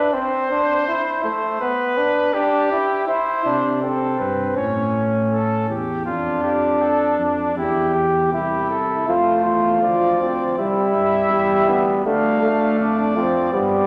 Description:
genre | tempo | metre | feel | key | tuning
classical, imitative canzona for brass ensemble | 81 BPM | 4/4 | straight | C major | A4 = 440 Hz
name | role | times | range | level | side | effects
warm trumpet | melody | 0.0-13.9 s | D4 to F5 | -26 LUFS | equal | none
mellow flugelhorn | second line | 0.0-13.9 s | A3 to G4 | -23 LUFS | equal | none
mellow tuba | bass | 3.5-13.9 s | C2 to C3 | -29 LUFS | equal | none
warm trombone | accompaniment | 9.1-13.9 s | F3 to A3 | -22 LUFS | equal | none
room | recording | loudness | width
wet scoring stage reverb, RT60 1.6 s | tube saturation | -20 LUFS | mono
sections
0.0-9.1 A section; 9.1-13.9 B section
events
none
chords
0.1 Am/C; 1.6 G/B; 3.1 C; 4.6 A; 6.1 Dm/F; 7.6 C/E; 9.1 F; 10.6 C; 12.1 Dm

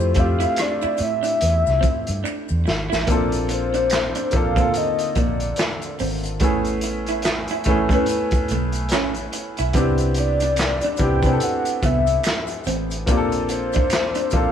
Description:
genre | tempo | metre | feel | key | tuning
R&B, neo-soul | 72 BPM | 4/4 | swing 60% on 16ths | unclear | A4 = 440 Hz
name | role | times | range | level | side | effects
soft octave-layered synth lead | melody | 0.0-14.5 s | C5 to G5 | -23 LUFS | left 2 dB | chorus, phaser
clear upright piano | accompaniment | 0.0-14.5 s | D3 to B4 | -24 LUFS | left 1 dB | none
vintage muted fingered electric bass | bass | 0.0-14.5 s | Ab1 to C3 | -24 LUFS | right 1 dB | none
maracas and finger snaps | percussion | 0.0-14.5 s | none | -36 LUFS | right 2 dB | none
crunchy breakbeat drum kit | drums | 0.1-14.5 s | handclaps, hi-hat, kick drum, rim click, snare drum | -23 LUFS | equal | none
electric guitar through a small old amp | second line | 0.2-14.4 s | A3 to E4 | -28 LUFS | right 4 dB | spring reverb
room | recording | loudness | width
light reverb | band playing live in one room | -18 LUFS | side -9 dB against mid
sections
0.0-3.1 A section; 3.1-14.5 B section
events
drum fill 2.2-3.1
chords
0.0 Fmaj9; 3.1 Bbmaj9; 6.4 Amaj9; 9.7 Cmaj9; 13.1 Bbmaj9

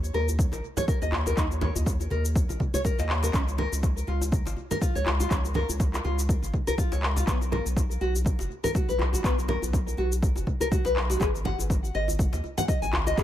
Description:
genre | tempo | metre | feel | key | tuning
afro house | 122 BPM | 4/4 | swing 56% on 16ths | unclear | A4 = 440 Hz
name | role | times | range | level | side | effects
round analog bass | bass | 0.0-13.2 s | F#1 to Eb2 | -28 LUFS | equal | sidechain pumping
electronic shaker and handclaps | drums | 0.0-13.2 s | none | -33 LUFS | left 1 dB | analog delay
nylon-string guitar | arpeggios | 0.1-13.2 s | B3 to Ab5 | -30 LUFS | left 2 dB | sidechain pumping, dub echo
congas | percussion | 0.1-13.2 s | none | -36 LUFS | right 4 dB | none
djembe | percussion | 0.3-13.2 s | none | -36 LUFS | left 1 dB | analog delay
electronic kick drum | drums | 0.4-13.2 s | none | -26 LUFS | equal | none
room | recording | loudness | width
little or no reverb | echo-heavy mix | -24 LUFS | side -12 dB against mid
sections
0.0-13.2 A section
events
none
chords
0.0 Eb5; 3.3 Db; 7.3 B5; 11.2 Ab5

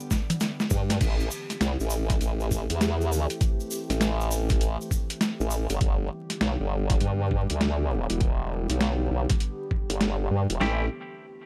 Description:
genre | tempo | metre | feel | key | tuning
glitch hop | 100 BPM | 4/4 | swing 64% on 16ths | A minor | A4 = 442 Hz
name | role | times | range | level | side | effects
warbly tape-like pad | sustained chords | 0.0-10.9 s | D3 to G4 | -39 LUFS | equal | chorus, built-in reverb, phaser, sidechain pumping
cabasa | percussion | 0.0-5.8 s | none | -41 LUFS | equal | none
boom bap sampler-style drum kit | drums | 0.1-10.8 s | kick drum, snare drum | -28 LUFS | equal | overdrive
boom bap sampler-style drum kit | drums | 0.1-10.6 s | crash cymbal, hi-hat, snare drum, toms | -30 LUFS | equal | overdrive
formant-sweep wobble bass | bass | 0.7-10.9 s | E1 to G2 | -28 LUFS | equal | chorus, tube saturation
semi-hollow electric guitar | stabs | 10.6-10.8 s | A3 to G4 | -33 LUFS | equal | vintage 12-bit sampler grit, sidechain pumping, delay
room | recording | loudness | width
little or no reverb | vinyl crackle | -26 LUFS | mono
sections
0.0-1.0 A section; 1.0-10.6 B section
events
drop 0.0-1.0; drum fill 0.1-1.0; band accent 0.9-1.2; filter sweep on wobble bass 1.0-10.6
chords
0.0 G; 1.0 Am7; 5.8 G; 10.6 Am7

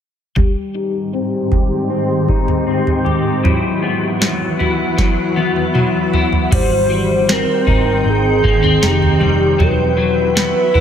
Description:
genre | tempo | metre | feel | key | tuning
dream pop | 78 BPM | 4/4 | straight | unclear | A4 = 440 Hz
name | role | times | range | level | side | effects
shimmering ambient pad | sustained chords | 1.0-10.8 s | E2 to G5 | -19 LUFS | right 1 dB | chorus, built-in reverb, low-pass filter
electric guitar at the edge of break-up | arpeggios | 0.4-10.8 s | F#3 to G4 | -18 LUFS | left 4 dB | ensemble chorus, low-pass filter, ping-pong delay
booming analog drum machine | drums | 0.4-10.8 s | crash cymbal, kick drum, snare drum, toms | -17 LUFS | right 1 dB | overdrive
warbly nostalgic lead | melody | 6.5-10.8 s | G4 to C5 | -17 LUFS | right 1 dB | chorus, ping-pong delay
vintage muted picked electric bass | bass | 6.5-10.8 s | E1 to Ab1 | -19 LUFS | equal | none
room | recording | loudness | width
moderate plate reverb, RT60 3.2 s | none | -13 LUFS | side -8 dB against mid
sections
0.4-6.5 A section; 6.5-10.8 B section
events
filter sweep 0.4-6.5; drum fill 5.0-6.5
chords
0.4 Abmaj7; 3.4 Esus2; 6.5 Abmaj7; 9.6 Esus2

